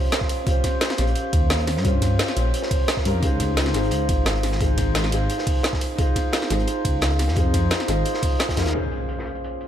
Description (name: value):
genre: liquid drum and bass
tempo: 174 BPM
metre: 4/4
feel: straight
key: unclear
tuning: A4 = 440 Hz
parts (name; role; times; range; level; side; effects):
- clear concert grand piano; accompaniment; 0.0-9.7 s; Bb2 to C5; -26 LUFS; equal; wide subtle chorus, ping-pong delay
- crunchy breakbeat drum kit; drums; 0.1-9.7 s; hi-hat, snare drum; -32 LUFS; equal; high-pass filter on hats, low-pass filter on hats, high-pass filter on snare, low-pass filter on snare, high-pass filter on room, low-pass filter on room
- drum and bass drum kit; drums; 0.1-8.6 s; hi-hat, ride cymbal, snare drum; -27 LUFS; equal; overdrive, low-pass filter on snare, low-pass filter on hats, low-pass filter on cymbals
- electronic kick drum; drums; 0.2-8.6 s; none; -23 LUFS; equal; none
- dark detuned saw bass; bass; 1.0-8.7 s; Ab1 to G2; -22 LUFS; equal; tube saturation
- impact; sound effects; 8.7-9.7 s; none; -30 LUFS; equal; none
room: light reverb, small room ambience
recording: none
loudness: -19 LUFS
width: side -10 dB against mid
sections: 0.0-8.7 A section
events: drop 0.0-8.7; impact 8.7-9.7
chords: 0.0 Eb13; 3.2 Dbmaj9; 8.7 Bbm9